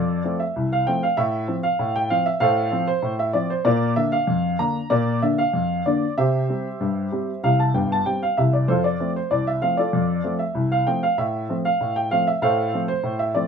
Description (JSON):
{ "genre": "ragtime piano", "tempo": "96 BPM", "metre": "2/4", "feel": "straight", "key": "F major", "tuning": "A4 = 440 Hz", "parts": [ { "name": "warm upright piano", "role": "solo", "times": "0.0-13.5 s", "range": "G1 to Bb5", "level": "-19 LUFS", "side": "equal", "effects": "none" } ], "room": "moderate studio reverb, RT60 0.5 s", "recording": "minimal, uncompressed stereo recording", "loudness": "-19 LUFS", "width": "side -6 dB against mid", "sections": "0.0-13.5 A section", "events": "none", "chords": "0.0 F; 1.2 F/A; 3.7 Bb; 6.2 C; 8.7 F; 11.2 F/A", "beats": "0.56 | 1.18 1.80 | 2.42 3.04 | 3.67 4.29 | 4.91 5.54 | 6.16 6.79 | 7.42 8.05 | 8.68 9.30 | 9.93 10.55 | 11.17 11.79 | 12.41 13.03" }